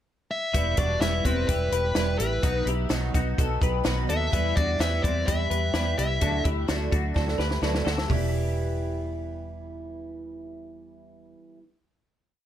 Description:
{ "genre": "jangly indie pop", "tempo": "127 BPM", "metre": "4/4", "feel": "straight", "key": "E minor", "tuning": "A4 = 440 Hz", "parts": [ { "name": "high-gain lead guitar", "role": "melody", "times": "0.3-6.4 s", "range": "B4 to E5", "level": "-29 LUFS", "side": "left 1 dB", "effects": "distortion, tape echo" }, { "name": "picked twelve-string acoustic guitar", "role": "accompaniment", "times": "0.5-11.6 s", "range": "B2 to E4", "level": "-32 LUFS", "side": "right 6 dB", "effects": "none" }, { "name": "twelve-string electric guitar", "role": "arpeggios", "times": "0.5-9.5 s", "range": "B3 to B4", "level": "-31 LUFS", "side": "left 4 dB", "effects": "analog chorus, tape echo" }, { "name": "vintage muted fingered electric bass", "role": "bass", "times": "0.5-11.3 s", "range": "E1 to E2", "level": "-28 LUFS", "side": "equal", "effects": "none" }, { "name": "compact cocktail drum kit", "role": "drums", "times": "0.5-8.2 s", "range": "hi-hat, kick drum, snare drum, toms", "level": "-27 LUFS", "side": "equal", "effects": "none" } ], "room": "moderate studio reverb, RT60 0.5 s", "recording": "none", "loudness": "-23 LUFS", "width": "side -11 dB against mid", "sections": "0.0-0.5 pickup bar; 0.5-8.1 verse; 8.1-11.8 final chord", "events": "drum fill 7.2-8.1", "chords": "0.0 N.C.; 0.5 Em; 2.4 B; 4.3 Em; 6.2 Dadd9; 8.1 Em" }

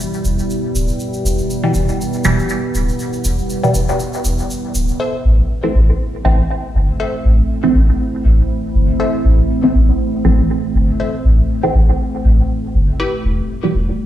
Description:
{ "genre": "dub techno", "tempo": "120 BPM", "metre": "4/4", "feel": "swing 55% on 16ths", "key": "A minor", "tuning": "A4 = 436 Hz", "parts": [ { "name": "deep dark ambient pad", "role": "sustained chords", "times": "0.0-14.1 s", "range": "G3 to E4", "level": "-21 LUFS", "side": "right 1 dB", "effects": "chorus, built-in reverb" }, { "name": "tube shaker", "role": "percussion", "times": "0.0-5.0 s", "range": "none", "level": "-28 LUFS", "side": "right 1 dB", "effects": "none" }, { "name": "soft dub sub bass", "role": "bass", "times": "0.2-13.9 s", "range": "D1 to A1", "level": "-13 LUFS", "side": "equal", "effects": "none" }, { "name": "filtered dub chord stab", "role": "stabs", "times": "1.6-13.7 s", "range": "B2 to C4", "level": "-18 LUFS", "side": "right 1 dB", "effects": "phaser, dub echo" }, { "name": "wavetable chord stab", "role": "riff", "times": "5.0-13.2 s", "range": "E4 to E5", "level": "-25 LUFS", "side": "left 2 dB", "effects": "dub echo" } ], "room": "light reverb, digital ambience", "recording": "played on a big sound system in a bare room, large studio reverb", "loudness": "-13 LUFS", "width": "side -12 dB against mid", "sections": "0.0-5.0 A section; 5.0-14.1 A section", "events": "filter sweep on synth stab 5.0-14.1", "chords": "0.0 Em; 5.0 Am; 13.0 Em" }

